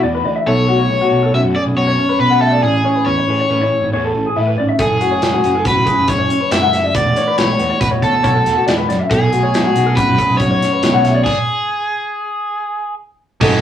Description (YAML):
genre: math rock and midwest emo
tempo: 139 BPM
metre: 5/4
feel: straight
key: unclear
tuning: A4 = 441 Hz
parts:
  - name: mellow electric guitar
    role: accompaniment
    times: 0.0-11.3 s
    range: F#2 to A4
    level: -20 LUFS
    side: right 2 dB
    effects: none
  - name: electric guitar through a small old amp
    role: arpeggios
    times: 0.0-13.6 s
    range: F#4 to F#5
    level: -18 LUFS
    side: left 4 dB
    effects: none
  - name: fuzz picked electric bass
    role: bass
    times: 0.0-13.6 s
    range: E1 to A2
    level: -21 LUFS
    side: equal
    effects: overdrive
  - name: cranked stack guitar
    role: melody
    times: 0.5-13.6 s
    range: G#3 to E5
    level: -17 LUFS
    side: equal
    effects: overdrive
  - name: modern studio drum kit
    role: drums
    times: 4.8-13.5 s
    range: crash cymbal, hi-hat, kick drum, snare drum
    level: -18 LUFS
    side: right 1 dB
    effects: none
  - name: overdriven electric guitar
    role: riff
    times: 13.4-13.6 s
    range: F#3 to F#4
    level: -17 LUFS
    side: right 1 dB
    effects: none
room: moderate studio reverb, RT60 0.5 s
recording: rough rehearsal-room recording, small room ambience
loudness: -13 LUFS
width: side -10 dB against mid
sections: 0.0-13.4 A section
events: stop 11.3-13.4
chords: 0.5 B7sus2; 2.6 Amaj9; 4.8 F#m11; 6.9 E9sus4; 9.1 Bm9; 11.3 N.C.